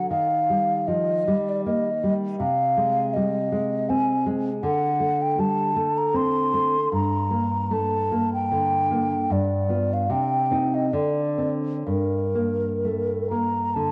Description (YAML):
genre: romantic duo for flute and classical guitar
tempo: 60-82 BPM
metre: 3/4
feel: rubato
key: G minor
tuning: A4 = 441 Hz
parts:
  - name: mellow hollow concert flute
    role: melody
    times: 0.0-13.9 s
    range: Bb4 to C6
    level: -26 LUFS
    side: equal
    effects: cassette tape
  - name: nylon-string guitar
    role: accompaniment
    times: 0.0-13.9 s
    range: G2 to F4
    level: -27 LUFS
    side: equal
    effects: none
room: moderate spring reverb, RT60 2.4 s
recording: home recording on cassette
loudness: -23 LUFS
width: mono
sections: 0.0-13.9 A section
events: none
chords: 0.1 Eb; 2.4 Ab/C; 4.6 D5; 6.9 Gm; 9.3 G7; 10.1 Cm; 10.9 Csus2/D; 11.9 Gm